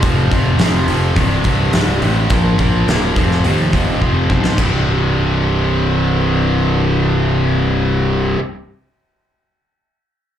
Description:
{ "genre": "hard rock", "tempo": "105 BPM", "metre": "4/4", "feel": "straight", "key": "C minor", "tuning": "A4 = 440 Hz", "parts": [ { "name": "tight distorted guitar", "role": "riff", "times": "0.0-8.4 s", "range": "C2 to Bb3", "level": "-17 LUFS", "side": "equal", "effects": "distortion, slapback echo" }, { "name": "fuzz fingered electric bass", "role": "bass", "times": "0.0-8.3 s", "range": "C1 to Eb2", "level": "-16 LUFS", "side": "equal", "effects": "overdrive" }, { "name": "huge arena drum kit", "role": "drums", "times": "0.0-4.7 s", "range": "crash cymbal, hi-hat, kick drum, snare drum", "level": "-18 LUFS", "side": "equal", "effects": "none" } ], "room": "light reverb", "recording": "live gig heard through the venue's PA, club reverb", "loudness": "-13 LUFS", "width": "side -10 dB against mid", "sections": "0.0-4.6 A section; 4.6-6.9 B section", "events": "drum fill 4.0-4.6", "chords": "0.0 F5; 1.2 C5; 2.3 Bb5; 3.2 F5; 4.6 C5" }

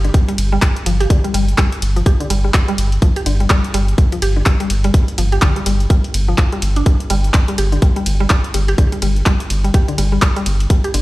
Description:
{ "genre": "minimal techno", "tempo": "125 BPM", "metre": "4/4", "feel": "swing 59% on 16ths", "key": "unclear", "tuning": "A4 = 440 Hz", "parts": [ { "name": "mallet-like synth pluck", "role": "riff", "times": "0.0-11.0 s", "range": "D3 to G4", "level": "-22 LUFS", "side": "equal", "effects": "chorus, phaser, sidechain pumping, tape echo" }, { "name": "rubbery square bass", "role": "bass", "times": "0.0-11.0 s", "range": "G1", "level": "-16 LUFS", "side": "equal", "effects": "sidechain pumping" }, { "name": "punchy analog drum machine", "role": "drums", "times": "0.0-11.0 s", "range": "handclaps, hi-hat, ride cymbal", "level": "-22 LUFS", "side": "equal", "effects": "overdrive" }, { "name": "electronic kick drum", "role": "drums", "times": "0.1-10.8 s", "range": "none", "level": "-13 LUFS", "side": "equal", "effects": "none" } ], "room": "little or no reverb", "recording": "played on a big sound system in a bare room, stone room reverb", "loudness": "-13 LUFS", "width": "side -18 dB against mid", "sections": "0.0-11.0 A section", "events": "none", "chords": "0.0 G5" }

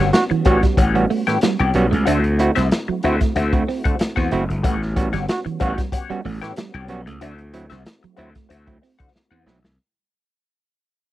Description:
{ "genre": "funk", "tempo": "93 BPM", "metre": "4/4", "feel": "straight", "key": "unclear", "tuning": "A4 = 436 Hz", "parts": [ { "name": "semi-hollow electric guitar", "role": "accompaniment", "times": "0.0-9.7 s", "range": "F#4 to G5", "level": "-24 LUFS", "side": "left 7 dB", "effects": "wah" }, { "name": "percussive tonewheel organ", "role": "sustained chords", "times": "0.0-9.8 s", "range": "G3 to F#4", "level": "-31 LUFS", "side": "equal", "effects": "none" }, { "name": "clean electric guitar", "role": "riff", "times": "0.0-9.6 s", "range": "E3 to D4", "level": "-25 LUFS", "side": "right 7 dB", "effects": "analog chorus" }, { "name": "overdriven clav", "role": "stabs", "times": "0.0-9.6 s", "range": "A2 to F#4", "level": "-22 LUFS", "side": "right 3 dB", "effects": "none" }, { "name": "gritty slap bass", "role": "bass", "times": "0.0-9.8 s", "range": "F#1 to E2", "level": "-21 LUFS", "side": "equal", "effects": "overdrive" }, { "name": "mellow trombone", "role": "second line", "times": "0.1-0.7, 5.3-5.8 s", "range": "F#4", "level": "-21 LUFS", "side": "right 3 dB", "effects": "none" }, { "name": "crunchy breakbeat drum kit", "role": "drums", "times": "0.1-9.8 s", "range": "hi-hat, kick drum, snare drum", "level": "-20 LUFS", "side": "equal", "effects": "none" } ], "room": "little or no reverb", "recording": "dry, close 1970s-style studio recording", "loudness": "-17 LUFS", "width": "side -14 dB against mid", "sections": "0.0-9.8 A section", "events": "fade-out 0.0-9.8; drum fill 9.1-9.8", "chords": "0.0 A13; 2.1 D9; 4.6 A13; 7.2 D9" }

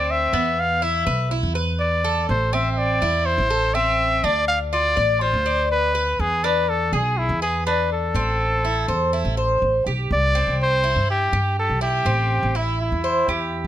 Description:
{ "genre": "latin, Cuban son and guajira", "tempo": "123 BPM", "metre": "4/4", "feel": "straight", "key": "A minor", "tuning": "A4 = 442 Hz", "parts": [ { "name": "warm trumpet", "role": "melody", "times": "0.0-13.7 s", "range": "E4 to F5", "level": "-21 LUFS", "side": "left 1 dB", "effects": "none" }, { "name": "Cuban tres", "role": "arpeggios", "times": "0.0-13.7 s", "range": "B3 to D5", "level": "-24 LUFS", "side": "equal", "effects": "none" }, { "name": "upright bass", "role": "bass", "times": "0.0-13.7 s", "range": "A1 to G2", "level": "-24 LUFS", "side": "equal", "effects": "none" } ], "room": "light reverb", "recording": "close, detailed microphones", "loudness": "-18 LUFS", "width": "side -12 dB against mid", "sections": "0.0-10.1 A section; 10.1-13.7 B section", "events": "none", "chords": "0.3 E5; 2.3 Am; 4.2 Dm; 6.2 E7; 8.2 Am7; 10.1 Cadd9; 12.1 Am7" }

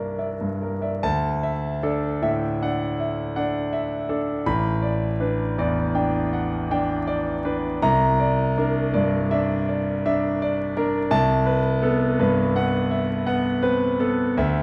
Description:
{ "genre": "classical, impressionist solo piano", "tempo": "46-58 BPM (dotted quarters)", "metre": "9/8", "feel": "rubato", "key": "D mixolydian", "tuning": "A4 = 440 Hz", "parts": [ { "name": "clear concert grand piano", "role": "solo", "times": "0.0-14.6 s", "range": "A1 to B5", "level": "-23 LUFS", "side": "equal", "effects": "none" } ], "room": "moderate recital hall reverb, RT60 1.4 s", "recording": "dark, warm production, vinyl crackle, nothing above 10.3 kHz", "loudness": "-23 LUFS", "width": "mono", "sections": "0.0-1.0 A section; 1.0-14.6 B section", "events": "none", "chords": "0.0 C9; 1.0 Dadd9; 4.5 A11; 7.8 C9; 11.1 Gmaj9/C" }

